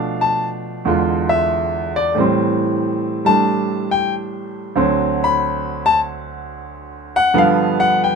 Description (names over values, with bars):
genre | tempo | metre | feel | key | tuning
solo jazz | 93 BPM | 4/4 | swing 67% on 8ths, rubato | unclear | A4 = 440 Hz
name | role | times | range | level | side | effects
clear grand piano | solo | 0.0-8.2 s | D2 to B5 | -16 LUFS | equal | none
room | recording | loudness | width
light reverb | minimal, uncompressed stereo recording | -15 LUFS | side -5 dB against mid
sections
0.0-8.2 A section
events
grand piano solo 0.0-8.2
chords
0.0 Bm7b5; 0.9 E7b9; 2.2 Am7; 4.8 D7; 7.4 G7